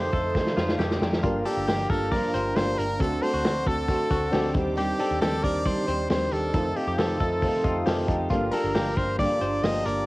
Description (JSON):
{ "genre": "jangly indie pop", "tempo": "136 BPM", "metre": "4/4", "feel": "straight", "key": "G minor", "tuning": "A4 = 440 Hz", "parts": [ { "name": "brilliant trumpet", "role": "melody", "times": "0.0-10.1 s", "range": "G4 to Eb5", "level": "-28 LUFS", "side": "equal", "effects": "cassette tape" }, { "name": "fingerpicked twelve-string acoustic guitar", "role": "accompaniment", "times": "0.0-10.1 s", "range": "F2 to F#4", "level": "-31 LUFS", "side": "right 2 dB", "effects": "cassette tape" }, { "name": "phased analog pad", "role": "sustained chords", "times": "0.0-10.1 s", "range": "G4 to Eb6", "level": "-39 LUFS", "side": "right 1 dB", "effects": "none" }, { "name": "direct-recorded clean electric guitar", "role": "arpeggios", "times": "0.0-10.1 s", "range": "F4 to D5", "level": "-33 LUFS", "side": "left 2 dB", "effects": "phaser, cassette tape" }, { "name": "vintage muted picked electric bass", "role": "bass", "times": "0.0-10.0 s", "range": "G1 to F2", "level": "-32 LUFS", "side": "equal", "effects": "none" }, { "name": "vintage drum kit", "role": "drums", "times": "0.1-10.0 s", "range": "hi-hat, kick drum, snare drum", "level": "-28 LUFS", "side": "equal", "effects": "cassette tape" }, { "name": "soft electric-piano-like synth keys", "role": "accompaniment", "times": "1.2-10.1 s", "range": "Bb3 to A5", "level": "-30 LUFS", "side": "left 1 dB", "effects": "chorus, cassette tape" } ], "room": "light reverb", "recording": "home recording on cassette, vinyl crackle", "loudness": "-22 LUFS", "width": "side -20 dB against mid", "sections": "0.0-10.1 A section", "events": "drum fill 0.4-1.2; synth keys fill 7.4-8.3", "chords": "0.0 F7; 1.2 Gm7; 3.0 D7; 4.6 Cmadd9/Eb; 6.5 F7; 8.3 Gm7" }